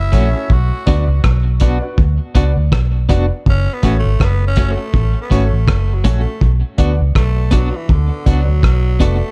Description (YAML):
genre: roots reggae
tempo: 81 BPM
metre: 4/4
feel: swing 56% on 16ths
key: F# minor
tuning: A4 = 441 Hz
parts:
  - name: growling tenor saxophone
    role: melody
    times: 0.0-9.3 s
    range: D3 to F#4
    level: -28 LUFS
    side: equal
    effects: tape echo
  - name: vintage muted fingered electric bass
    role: bass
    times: 0.0-9.2 s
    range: E#1 to D2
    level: -17 LUFS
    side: equal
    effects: none
  - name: clean electric guitar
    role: accompaniment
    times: 0.1-9.2 s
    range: A3 to F#4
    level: -24 LUFS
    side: equal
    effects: tremolo, tape echo
  - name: warm grand piano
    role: stabs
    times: 0.1-9.2 s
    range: C#4 to D5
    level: -28 LUFS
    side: equal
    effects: none
  - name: cloth-damped thuddy drum kit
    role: drums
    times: 0.1-9.2 s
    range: hi-hat, kick drum, rim click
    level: -16 LUFS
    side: equal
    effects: none
room: studio reverb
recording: dark, warm production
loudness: -15 LUFS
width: mono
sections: 0.0-3.5 A section; 3.5-9.3 B section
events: tenor saxophone solo 3.5-9.3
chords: 0.0 F#m; 0.5 Bm; 3.5 F#m; 6.4 Bm